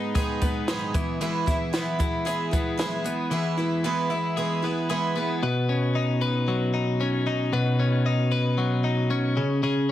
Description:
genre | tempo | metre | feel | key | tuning
jangly indie pop | 114 BPM | 4/4 | straight | B major | A4 = 441 Hz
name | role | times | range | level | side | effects
picked twelve-string acoustic guitar | accompaniment | 0.0-5.4 s | G#2 to E4 | -28 LUFS | right 4 dB | none
twelve-string electric guitar | arpeggios | 0.0-9.9 s | G#2 to B4 | -24 LUFS | left 1 dB | analog delay
compact cocktail drum kit | drums | 0.2-3.2 s | hi-hat, kick drum, snare drum | -27 LUFS | equal | none
room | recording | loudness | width
moderate studio reverb, RT60 0.6 s | heavily compressed radio sound, vinyl crackle | -23 LUFS | side -12 dB against mid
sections
0.0-5.4 A section; 5.4-9.9 B section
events
none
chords
0.0 G#m; 0.9 E; 5.4 Badd9; 9.4 C#5

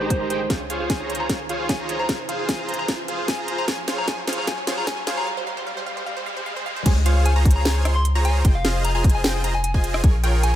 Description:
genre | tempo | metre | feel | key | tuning
future bass | 151 BPM | 4/4 | half-time | unclear | A4 = 440 Hz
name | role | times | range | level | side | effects
tine electric piano | accompaniment | 0.0-0.5 s | Ab3 to C5 | -32 LUFS | right 3 dB | phaser, sidechain pumping, digital delay
supersaw chords | riff | 0.0-10.5 s | Eb4 to C6 | -27 LUFS | right 1 dB | sidechain pumping, low-pass filter
long sustained 808-style bass | bass | 0.0-10.6 s | F1 to Db2 | -22 LUFS | equal | sidechain pumping
riser | sound effects | 0.0-6.9 s | none | -33 LUFS | equal | none
soft struck synth lead | melody | 0.1-10.5 s | C5 to C6 | -29 LUFS | left 2 dB | chorus, sidechain pumping, tape echo
electronic kick drum | drums | 0.1-10.1 s | none | -18 LUFS | equal | none
trap drum kit | drums | 0.1-10.5 s | crash cymbal, hi-hat, rim click, snare drum | -26 LUFS | equal | none
wide unison pluck | arpeggios | 0.5-6.8 s | F4 to F5 | -33 LUFS | right 3 dB | auto-pan, sidechain pumping, digital delay
wide unison pluck | arpeggios | 6.9-10.5 s | F5 to C6 | -33 LUFS | equal | sidechain pumping
room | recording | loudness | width
light reverb | high-pass filter | -20 LUFS | side -12 dB against mid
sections
0.0-6.9 A section; 6.9-10.6 B section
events
build-up 0.0-6.9; riser 0.0-6.9; filter sweep on soft synth lead 0.0-6.9; filter sweep 0.0-6.9; drum fill 0.5-5.3; break 5.3-6.9; drop 6.9-10.6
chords
0.0 Abmaj7; 0.5 Dbmaj7; 2.1 Fm; 3.7 Bbm7; 5.3 Csus4; 6.9 Dbmaj7; 8.4 Fm9; 10.0 Bbm7

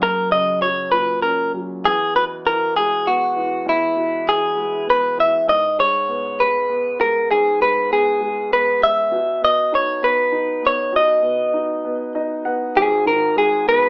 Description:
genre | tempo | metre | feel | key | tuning
pop | 66 BPM (dotted quarters) | 6/8 | straight | G# minor | A4 = 439 Hz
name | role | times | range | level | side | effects
direct-recorded clean electric guitar | melody | 0.0-13.9 s | E4 to E5 | -16 LUFS | equal | none
warm grand piano | accompaniment | 0.0-13.9 s | G#1 to F#5 | -26 LUFS | equal | none
room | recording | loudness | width
wet studio reverb, RT60 0.6 s | band playing live in one room, AM radio sound | -16 LUFS | side -27 dB against mid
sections
0.0-5.5 A section; 5.5-12.8 B section; 12.8-13.9 C section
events
grand piano fill 11.8-12.8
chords
0.0 F#; 1.8 E; 5.5 G#m; 9.1 B; 12.8 G#m

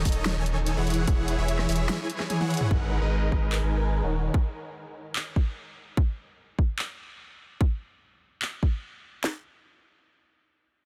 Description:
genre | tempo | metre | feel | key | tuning
future bass | 147 BPM | 4/4 | half-time | G# minor | A4 = 440 Hz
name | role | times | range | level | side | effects
supersaw chords | riff | 0.0-4.3 s | D#3 to G#5 | -32 LUFS | equal | subtle chorus, sidechain pumping, low-pass filter, tape echo
saturated sub bass | bass | 0.0-4.3 s | D#1 to G#1 | -29 LUFS | equal | sidechain pumping
dubstep drum kit | drums | 0.1-8.5 s | handclaps, hi-hat, rim click, snare drum, toms | -35 LUFS | equal | none
trap drum kit | drums | 0.1-9.3 s | handclaps, kick drum, snare drum | -26 LUFS | equal | none
room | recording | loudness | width
light reverb | dense, heavily limited modern master | -27 LUFS | mono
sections
0.0-2.7 A section; 2.7-9.2 B section; 9.2-10.8 C section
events
drop 0.0-2.7; drum fill 2.3-2.7; filter sweep on supersaw synth 2.7-4.3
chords
0.0 F#m13/D#; 0.9 E6; 2.7 G#m7; 4.1 D#m7; 6.0 N.C.

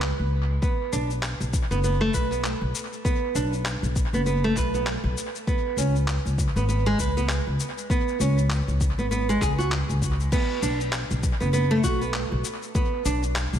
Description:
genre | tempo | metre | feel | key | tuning
organic downtempo | 99 BPM | 4/4 | swing 58% on 16ths | B dorian | A4 = 440 Hz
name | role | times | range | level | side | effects
upright bass | bass | 0.0-13.6 s | F#1 to C#2 | -25 LUFS | left 1 dB | none
dusty soul sampler-style drum kit | drums | 0.0-13.6 s | crash cymbal, handclaps, shaker | -33 LUFS | left 2 dB | studio reverb, analog delay
flamenco guitar | arpeggios | 0.6-13.2 s | G#3 to B4 | -27 LUFS | right 2 dB | low-pass filter, tape echo, shimmer reverb
electronic kick drum | drums | 0.6-12.9 s | none | -26 LUFS | equal | studio reverb
room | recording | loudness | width
light reverb, small room ambience | echo-heavy mix | -22 LUFS | side -10 dB against mid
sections
0.0-13.6 A section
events
none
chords
0.0 C#5; 0.6 B5; 5.5 C#5; 10.3 B5

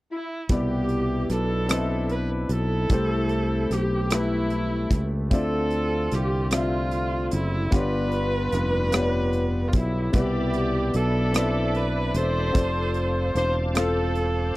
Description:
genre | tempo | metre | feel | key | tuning
slow gospel | 50 BPM (dotted quarters) | 6/8 | straight | C major | A4 = 440 Hz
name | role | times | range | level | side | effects
clear horn section | melody | 0.1-14.3 s | G3 to C5 | -30 LUFS | left 2 dB | slapback echo
rich viola | melody | 0.1-14.6 s | E4 to C5 | -30 LUFS | right 3 dB | none
clear concert grand piano | accompaniment | 0.5-14.6 s | G2 to F5 | -28 LUFS | left 1 dB | none
fingered electric bass | bass | 0.5-14.5 s | E1 to D2 | -26 LUFS | equal | none
modern studio drum kit | drums | 0.5-14.3 s | hi-hat, kick drum, rim click | -24 LUFS | equal | none
bright tonewheel organ | sustained chords | 10.1-14.6 s | C5 to D6 | -33 LUFS | right 2 dB | fast rotary speaker, chorus vibrato
room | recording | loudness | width
little or no reverb | dry, close 1970s-style studio recording | -22 LUFS | side -18 dB against mid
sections
0.5-14.6 A section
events
none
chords
0.5 Cmaj9; 2.9 Am7; 5.3 Dm9; 7.7 G7; 10.1 Cmaj9; 12.6 F6

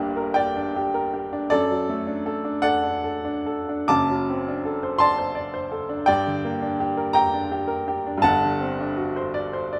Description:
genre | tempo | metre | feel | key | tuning
classical, romantic nocturne for solo piano | 46-57 BPM (dotted quarters) | 12/8 | rubato | G minor | A4 = 440 Hz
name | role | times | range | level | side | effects
clear upright piano | solo | 0.0-9.8 s | F#1 to D6 | -24 LUFS | equal | none
room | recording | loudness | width
moderate large studio reverb, RT60 1.3 s | none | -24 LUFS | mono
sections
0.0-9.8 A section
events
none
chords
0.0 Gm; 1.5 D/F#; 3.9 D7/F#; 6.1 Gm; 8.2 D7/G

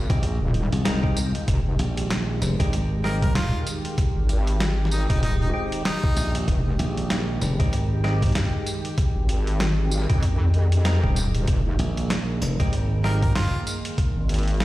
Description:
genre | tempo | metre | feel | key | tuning
glitch hop | 96 BPM | 4/4 | swing 58% on 16ths | F minor | A4 = 440 Hz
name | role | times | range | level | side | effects
warm analog pad | sustained chords | 0.0-14.6 s | Eb3 to G4 | -32 LUFS | equal | chorus, vintage 12-bit sampler grit, sidechain pumping
wobble bass | bass | 0.0-14.6 s | Eb1 to F2 | -21 LUFS | equal | chorus, overdrive
percussive tonewheel organ | stabs | 0.1-13.3 s | Ab3 to Bb4 | -34 LUFS | equal | overdrive, stopped rotary speaker, sidechain pumping, digital delay
glassy slap bass | bass | 0.1-13.5 s | F1 to C2 | -23 LUFS | equal | none
boom bap sampler-style drum kit | drums | 0.1-14.6 s | hi-hat, snare drum, tambourine | -30 LUFS | equal | none
electronic kick drum | drums | 0.1-14.1 s | none | -22 LUFS | equal | none
clear harmonica | melody | 3.0-6.3, 13.0-13.6 s | Eb4 to Bb4 | -32 LUFS | equal | digital delay
room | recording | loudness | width
little or no reverb | played on a big sound system in a bare room, large studio reverb | -20 LUFS | side -17 dB against mid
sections
0.0-14.6 A section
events
none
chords
0.0 Fm9

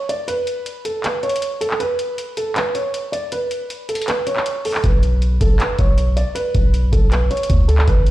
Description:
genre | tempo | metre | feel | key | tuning
hip hop, trap | 158 BPM | 4/4 | half-time | B minor | A4 = 438 Hz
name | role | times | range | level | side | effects
dark concert grand piano | melody | 0.0-8.1 s | A4 to D5 | -22 LUFS | right 2 dB | low-pass filter, tape echo
booming analog drum machine | drums | 0.1-8.1 s | handclaps, hi-hat, kick drum | -20 LUFS | equal | none
long sustained 808-style bass | bass | 4.8-8.1 s | A1 to D2 | -16 LUFS | equal | none
room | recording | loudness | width
little or no reverb | played on a big sound system in a bare room, large studio reverb, vinyl crackle | -16 LUFS | side -15 dB against mid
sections
0.0-8.1 A section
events
break 0.0-4.8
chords
0.0 N.C.; 4.8 Bsus2

